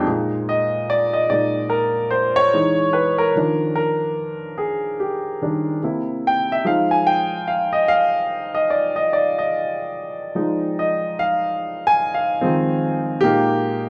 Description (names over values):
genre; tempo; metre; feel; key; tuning
R&B; 73 BPM; 4/4; swing 61% on 16ths; F dorian; A4 = 439 Hz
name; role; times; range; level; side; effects
warm baby grand piano; solo; 0.0-13.9 s; Bb2 to Ab5; -20 LUFS; equal; none
room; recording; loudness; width
moderate large studio reverb, RT60 1.1 s; band playing live in one room; -20 LUFS; mono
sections
0.1-13.2 A section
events
grand piano solo 0.1-13.2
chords
0.1 Bb7sus4; 2.5 Emaj7; 3.3 Ebmaj9; 5.8 C7; 6.6 Fm7; 13.2 Bb7sus4